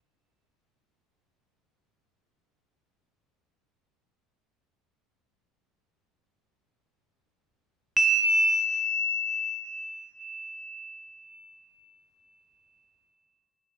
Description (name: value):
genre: world meditative, free-time meditation music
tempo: free time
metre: none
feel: none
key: unclear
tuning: A4 = 440 Hz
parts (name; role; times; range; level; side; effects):
- crotales; solo; 0.0-13.8 s; E7; -21 LUFS; equal; ping-pong delay
room: wet cathedral reverb, RT60 5.4 s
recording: in a vast, echoing space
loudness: -20 LUFS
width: side -5 dB against mid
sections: 0.0-13.8 A section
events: none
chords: none